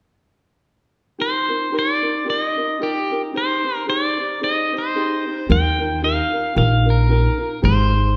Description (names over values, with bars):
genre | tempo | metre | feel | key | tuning
Hawaiian | 112 BPM | 4/4 | swing 58% on 8ths | Eb major | A4 = 440 Hz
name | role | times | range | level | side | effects
pedal steel guitar | melody | 1.2-8.2 s | G4 to G5 | -23 LUFS | equal | digital delay
ukulele | accompaniment | 1.2-8.2 s | Eb4 to C5 | -27 LUFS | equal | none
upright bass | bass | 5.5-8.2 s | Ab1 to Eb2 | -19 LUFS | equal | none
room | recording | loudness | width
moderate recital hall reverb, RT60 1.4 s | none | -20 LUFS | mono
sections
1.2-5.5 A section; 5.5-8.2 B section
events
none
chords
1.2 Ebadd9; 3.3 Abmaj7; 5.5 Ebadd9; 7.6 Abmaj7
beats
| 1.19 1.73 2.27 2.80 | 3.34 3.88 4.42 4.95 | 5.49 6.03 6.56 7.10 | 7.63